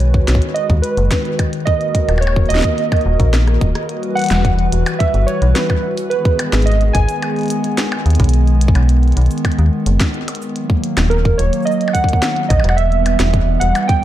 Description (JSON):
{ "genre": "IDM", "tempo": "108 BPM", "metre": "4/4", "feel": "straight", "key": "unclear", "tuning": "A4 = 440 Hz", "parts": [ { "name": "warbly lo-fi synth keys", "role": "melody", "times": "0.0-14.0 s", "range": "A#4 to G#5", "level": "-20 LUFS", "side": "right 3 dB", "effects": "chorus, digital delay, shimmer reverb" }, { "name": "hollow soft pad", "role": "sustained chords", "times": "0.0-14.0 s", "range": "D#3 to B4", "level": "-21 LUFS", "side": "equal", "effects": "chorus" }, { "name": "metallic FM bass", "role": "bass", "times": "0.0-13.7 s", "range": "D#1 to D#2", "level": "-14 LUFS", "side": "equal", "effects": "none" }, { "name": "glitchy drum kit", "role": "drums", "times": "0.0-14.0 s", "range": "cabasa, hi-hat, percussion blips, rim click, snare drum", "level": "-23 LUFS", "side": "left 1 dB", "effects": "none" }, { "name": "electronic kick drum", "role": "drums", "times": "0.1-14.0 s", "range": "none", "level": "-17 LUFS", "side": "equal", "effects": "none" } ], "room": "digital ambience", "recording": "dark, warm production", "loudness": "-13 LUFS", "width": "side -13 dB against mid", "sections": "0.0-3.9 A section; 3.9-14.0 B section", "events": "drum fill 3.3-3.9", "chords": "0.0 B6; 1.7 D#m; 3.9 Emadd9; 6.1 G#m; 8.3 B6; 10.6 D#m; 12.8 Em" }